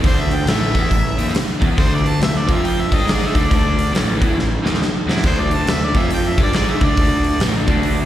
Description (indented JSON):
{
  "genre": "blues rock power trio and southern rock",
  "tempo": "138 BPM",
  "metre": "4/4",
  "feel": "swing 63% on 8ths",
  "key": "unclear",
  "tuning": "A4 = 440 Hz",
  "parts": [
    { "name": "overdriven tonewheel organ", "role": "sustained chords", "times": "0.0-8.0 s", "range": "A3 to A5", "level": "-33 LUFS", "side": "right 4 dB", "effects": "none" },
    { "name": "crunchy overdriven guitar", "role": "riff", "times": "0.0-8.1 s", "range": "A2 to G#4", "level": "-21 LUFS", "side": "equal", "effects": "slapback echo" },
    { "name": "fuzz picked electric bass", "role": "bass", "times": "0.0-8.1 s", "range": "A1 to G#2", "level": "-22 LUFS", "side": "equal", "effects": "overdrive" },
    { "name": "huge arena drum kit", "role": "drums", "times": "0.0-8.0 s", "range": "hi-hat, kick drum, snare drum", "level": "-18 LUFS", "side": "equal", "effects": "none" },
    { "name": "clear harmonica", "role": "melody", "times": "0.1-7.4 s", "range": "C5 to A5", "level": "-23 LUFS", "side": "equal", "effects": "overdrive, slapback echo" }
  ],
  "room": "small room ambience",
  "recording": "live gig heard through the venue's PA, recital hall reverb",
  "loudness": "-15 LUFS",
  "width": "side -12 dB against mid",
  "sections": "0.0-8.1 A section",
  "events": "harmonica solo 0.0-8.1; drum fill 4.4-5.2; tonewheel organ fill 4.6-5.2",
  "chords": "0.0 D5; 0.5 A7#9; 1.8 D7#9; 2.4 F5; 2.9 D7#9; 3.5 D5; 3.9 A7#9; 5.2 D7#9; 5.9 F5; 6.3 D7#9; 7.0 D5; 7.4 A7#9; 7.6 D5"
}